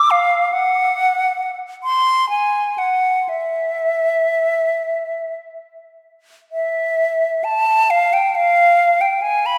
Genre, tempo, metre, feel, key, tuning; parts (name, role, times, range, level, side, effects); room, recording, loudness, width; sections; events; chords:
classical, free, expressive piece for unaccompanied flute; 44-73 BPM; 3/4; rubato; A4 = 439 Hz
bright silver concert flute; solo; 0.0-9.6 s; E5 to D6; -18 LUFS; equal
wet church reverb, RT60 2.6 s; -18 LUFS; mono
0.0-6.5 A section; 6.5-9.6 B section